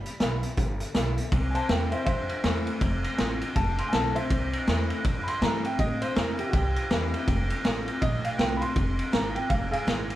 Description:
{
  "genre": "rockabilly",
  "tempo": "161 BPM",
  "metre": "4/4",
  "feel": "swing 61% on 8ths",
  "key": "unclear",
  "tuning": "A4 = 441 Hz",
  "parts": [
    { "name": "warm upright piano", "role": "melody", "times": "0.0-10.1 s", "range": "F#4 to C6", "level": "-32 LUFS", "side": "equal", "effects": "none" },
    { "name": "picked steel-string acoustic guitar", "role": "accompaniment", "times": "0.0-10.2 s", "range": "F2 to F4", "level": "-34 LUFS", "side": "left 3 dB", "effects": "none" },
    { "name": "upright bass", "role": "bass", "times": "0.0-10.1 s", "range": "F1 to A2", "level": "-31 LUFS", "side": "equal", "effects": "none" },
    { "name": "vintage drum kit", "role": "drums", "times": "0.1-10.2 s", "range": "hi-hat, kick drum, ride cymbal, snare drum", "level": "-27 LUFS", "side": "equal", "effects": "none" }
  ],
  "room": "moderate studio reverb, RT60 0.7 s",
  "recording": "band playing live in one room",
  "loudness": "-24 LUFS",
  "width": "side -14 dB against mid",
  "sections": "0.0-1.3 A section; 1.3-10.2 B section",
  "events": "upright piano solo 1.3-10.2",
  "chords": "0.0 G6; 1.3 C6; 2.8 F6; 4.3 C6; 7.3 F6; 8.8 Fm7"
}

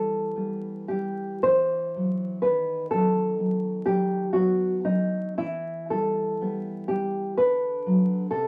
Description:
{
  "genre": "romantic duo for nylon-string guitar and classical guitar",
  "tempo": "52-65 BPM",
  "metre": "3/4",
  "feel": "rubato",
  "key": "E minor",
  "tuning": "A4 = 440 Hz",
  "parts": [
    { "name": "nylon-string guitar", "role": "melody", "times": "0.0-8.5 s", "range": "D#4 to C5", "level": "-27 LUFS", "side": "equal", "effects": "none" },
    { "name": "nylon-string guitar", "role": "accompaniment", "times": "0.0-8.5 s", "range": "C3 to B3", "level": "-30 LUFS", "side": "equal", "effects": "none" }
  ],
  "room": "wet small room reverb, RT60 0.5 s",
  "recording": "vinyl crackle",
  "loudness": "-26 LUFS",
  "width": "mono",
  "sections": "0.0-8.5 A section",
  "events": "none",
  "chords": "0.0 Em; 1.4 C/E; 2.4 B/D#; 5.4 Em; 7.4 Bm/D"
}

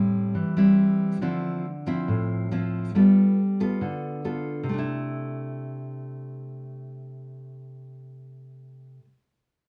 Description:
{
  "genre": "bossa nova",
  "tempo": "139 BPM",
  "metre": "4/4",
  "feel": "straight",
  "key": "C major",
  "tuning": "A4 = 440 Hz",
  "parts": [
    { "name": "nylon-string guitar", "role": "solo", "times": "0.0-9.1 s", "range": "A2 to A4", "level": "-26 LUFS", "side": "equal", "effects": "none" }
  ],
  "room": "wet studio reverb, RT60 0.8 s",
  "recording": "heard from further back in the room",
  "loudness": "-24 LUFS",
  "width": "mono",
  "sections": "0.0-4.7 A section; 4.7-8.1 B section",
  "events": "none",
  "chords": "0.0 Am7; 1.2 Dm9; 2.9 G9; 4.7 C69"
}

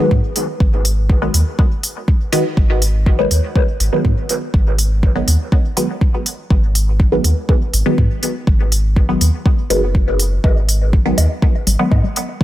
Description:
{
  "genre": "dub techno",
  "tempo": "122 BPM",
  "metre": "4/4",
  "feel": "straight",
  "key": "G# minor",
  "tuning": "A4 = 440 Hz",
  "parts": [
    { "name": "filtered dub chord stab", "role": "stabs", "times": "0.0-12.0 s", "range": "D#3 to B3", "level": "-20 LUFS", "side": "equal", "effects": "phaser, sidechain pumping, dub echo" },
    { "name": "warm sub bass", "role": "bass", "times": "0.1-12.4 s", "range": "F#1 to G#2", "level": "-16 LUFS", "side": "equal", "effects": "sidechain pumping" },
    { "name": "electronic kick drum", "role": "drums", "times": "0.1-12.4 s", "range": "none", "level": "-14 LUFS", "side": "equal", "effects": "studio reverb" },
    { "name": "electronic hi-hat", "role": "drums", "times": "0.4-12.3 s", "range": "none", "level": "-20 LUFS", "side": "equal", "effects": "studio reverb" },
    { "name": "woodblock and congas", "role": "percussion", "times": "10.4-12.1 s", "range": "none", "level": "-26 LUFS", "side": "left 2 dB", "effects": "sidechain pumping on perc, studio reverb, dub echo" }
  ],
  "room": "digital ambience",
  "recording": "none",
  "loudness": "-13 LUFS",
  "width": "side -14 dB against mid",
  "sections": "0.0-12.4 A section",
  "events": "none",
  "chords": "0.0 G#m7"
}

